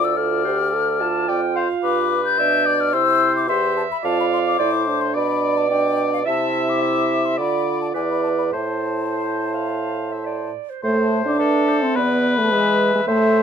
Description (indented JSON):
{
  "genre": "quick classical-period movement for wind quintet",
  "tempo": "108 BPM",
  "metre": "4/4",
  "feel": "straight",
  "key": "A minor",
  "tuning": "A4 = 440 Hz",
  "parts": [
    { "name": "mellow hollow silver concert flute", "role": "melody", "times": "0.0-13.4 s", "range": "F5 to G6", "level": "-24 LUFS", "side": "left 8 dB", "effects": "none" },
    { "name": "clear oboe", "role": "second line", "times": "0.0-13.4 s", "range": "A4 to E5", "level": "-24 LUFS", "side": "left 4 dB", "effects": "none" },
    { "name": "clear French horn", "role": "accompaniment", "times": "0.0-13.4 s", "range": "G#3 to A4", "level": "-23 LUFS", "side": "right 1 dB", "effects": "none" },
    { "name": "warm clarinet", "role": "accompaniment", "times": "0.0-13.4 s", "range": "A4 to A5", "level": "-25 LUFS", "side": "right 8 dB", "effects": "none" },
    { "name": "mellow bassoon", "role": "bass", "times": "0.0-13.4 s", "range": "D2 to A3", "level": "-25 LUFS", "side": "right 4 dB", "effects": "none" }
  ],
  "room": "light reverb",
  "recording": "none",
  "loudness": "-17 LUFS",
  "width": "side -7 dB against mid",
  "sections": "0.0-10.8 A section; 10.8-13.4 A section",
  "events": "none",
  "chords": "0.0 Dm; 1.8 G7; 2.9 C; 4.0 Fmaj7; 5.1 Bm; 6.3 C69; 7.4 Bdim/D; 7.9 E5; 8.5 Am; 12.0 E5",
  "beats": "0.18 0.74 1.29 | 1.84 2.39 2.94 3.49 | 4.04 4.59 5.15 5.70 | 6.26 6.82 7.38 7.95 | 8.53 9.11 9.69 10.27 | 10.84 11.40 11.96 12.52 | 13.08"
}